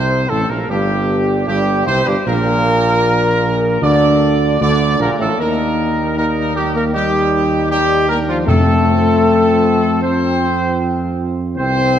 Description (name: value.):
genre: classical, ceremonial fanfare.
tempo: 77 BPM.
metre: 4/4.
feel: straight.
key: F major.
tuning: A4 = 440 Hz.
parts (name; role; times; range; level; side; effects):
clear trumpet section; melody; 0.0-12.0 s; F4 to D5; -18 LUFS; right 1 dB; none.
mellow French horn section; sustained chords; 0.0-12.0 s; F3 to D4; -18 LUFS; left 4 dB; none.
warm trombone section; sustained chords; 0.0-12.0 s; G2 to Eb4; -22 LUFS; right 3 dB; none.
mellow tuba; bass; 0.0-12.0 s; G1 to F2; -18 LUFS; right 2 dB; none.
timpani; percussion; 8.5-9.6 s; F2; -18 LUFS; left 1 dB; none.
room: wet scoring stage reverb, RT60 2.1 s.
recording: worn, warbling old tape, cassette tape, warbly pitch drift.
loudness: -13 LUFS.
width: side -9 dB against mid.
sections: 0.0-12.0 A section.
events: none.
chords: 0.0 C5; 2.3 Bb; 5.4 Eb; 8.5 F.